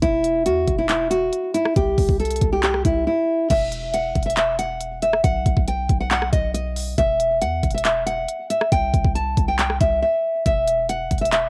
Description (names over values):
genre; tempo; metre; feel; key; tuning
hip hop, trap; 138 BPM; 4/4; half-time; E harmonic minor; A4 = 440 Hz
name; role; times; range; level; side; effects
nylon-string guitar; melody; 0.0-11.5 s; E4 to A5; -23 LUFS; equal; cassette tape
warm 808-style bass; bass; 0.0-11.5 s; E1 to E2; -28 LUFS; equal; none
trap drum kit; drums; 0.0-11.4 s; crash cymbal, handclaps, hi-hat, kick drum, rim click; -25 LUFS; equal; cassette tape
room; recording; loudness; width
light reverb; home recording on cassette; -21 LUFS; mono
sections
0.0-3.5 A section; 3.5-11.5 B section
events
break 10.0-10.5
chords
0.0 Esus2; 1.8 C; 3.5 Esus2; 5.2 B; 7.0 Esus2; 8.7 C; 10.5 Esus2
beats
| 0.02 0.46 0.89 1.33 | 1.76 2.20 2.63 3.07 | 3.50 3.94 4.37 4.81 | 5.24 5.68 6.11 6.54 | 6.98 7.42 7.85 8.28 | 8.72 9.15 9.59 10.02 | 10.46 10.89 11.33